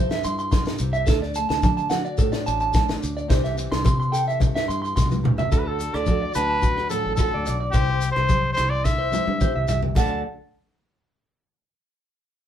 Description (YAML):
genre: highlife guitar band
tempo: 108 BPM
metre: 4/4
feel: straight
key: D mixolydian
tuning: A4 = 438 Hz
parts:
  - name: nylon-string guitar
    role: accompaniment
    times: 0.0-10.2 s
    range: G2 to A4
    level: -32 LUFS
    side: left 5 dB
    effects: none
  - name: electric guitar at the edge of break-up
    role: arpeggios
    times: 0.0-10.2 s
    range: A4 to C6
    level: -26 LUFS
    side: right 3 dB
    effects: none
  - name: fingered electric bass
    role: bass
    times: 0.0-10.2 s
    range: A1 to D3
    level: -28 LUFS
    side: equal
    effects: none
  - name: tight funk drum kit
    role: drums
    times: 0.1-10.1 s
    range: crash cymbal, hi-hat, kick drum, rim click, snare drum, toms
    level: -23 LUFS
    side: equal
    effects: none
  - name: shekere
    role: percussion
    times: 0.1-10.2 s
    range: none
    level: -33 LUFS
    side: left 3 dB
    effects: none
  - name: congas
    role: percussion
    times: 0.5-10.2 s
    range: none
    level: -30 LUFS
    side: right 1 dB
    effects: none
  - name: clear trumpet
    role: melody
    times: 5.5-10.2 s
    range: G4 to A5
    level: -25 LUFS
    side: left 1 dB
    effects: none
room: moderate small room reverb, RT60 0.6 s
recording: band playing live in one room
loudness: -20 LUFS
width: side -10 dB against mid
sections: 0.0-5.5 A section; 5.5-10.0 B section; 10.0-12.2 C section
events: drum fill 5.0-5.5, 8.9-10.0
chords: 0.0 C; 1.1 D; 3.3 C; 5.5 D; 7.7 C; 10.0 D